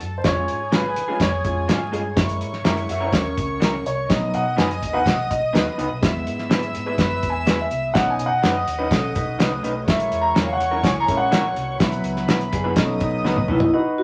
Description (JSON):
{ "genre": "uptempo 1960s-style soul", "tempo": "125 BPM", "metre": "4/4", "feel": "straight", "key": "unclear", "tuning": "A4 = 440 Hz", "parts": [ { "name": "warm studio string section", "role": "second line", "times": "0.0-13.7 s", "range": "G#4 to E6", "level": "-32 LUFS", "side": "equal", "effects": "none" }, { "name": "vintage muted fingered electric bass", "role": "bass", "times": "0.0-13.7 s", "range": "F#1 to E#3", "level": "-33 LUFS", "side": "equal", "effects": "none" }, { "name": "cloth-damped thuddy drum kit", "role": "drums", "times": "0.0-13.7 s", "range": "hi-hat, kick drum, snare drum, toms", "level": "-24 LUFS", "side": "equal", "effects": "none" }, { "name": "dark baby grand piano", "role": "accompaniment", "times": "0.2-14.0 s", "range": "F#3 to A#5", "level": "-26 LUFS", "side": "equal", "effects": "none" }, { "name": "electric guitar through a small old amp", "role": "stabs", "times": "0.7-13.6 s", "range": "F#3 to B4", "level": "-29 LUFS", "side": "equal", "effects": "none" }, { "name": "electric guitar through a small old amp", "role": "riff", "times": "2.6-3.8, 8.9-13.7 s", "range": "G#3 to C#5", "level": "-33 LUFS", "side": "equal", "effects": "spring reverb" }, { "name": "vibraphone with medium mallets", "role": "melody", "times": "13.5-14.0 s", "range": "D#4 to F#4", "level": "-21 LUFS", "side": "equal", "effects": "none" } ], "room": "wet studio reverb, RT60 0.5 s", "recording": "vinyl crackle", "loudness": "-21 LUFS", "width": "mono", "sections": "0.0-13.7 A section", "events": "grand piano solo 0.0-13.7; drum fill 13.2-13.7", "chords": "0.2 C#; 2.2 F#7; 4.1 B; 6.0 E; 8.0 Badd9; 9.9 F#7/A#; 11.8 Bsus4; 12.8 B", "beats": "| 0.24 0.73 1.21 1.69 | 2.17 2.65 3.13 3.62 | 4.10 4.58 5.06 5.54 | 6.02 6.50 6.99 7.47 | 7.95 8.43 8.91 9.40 | 9.88 10.36 10.84 11.32 | 11.80 12.29 12.77 13.25 | 13.73" }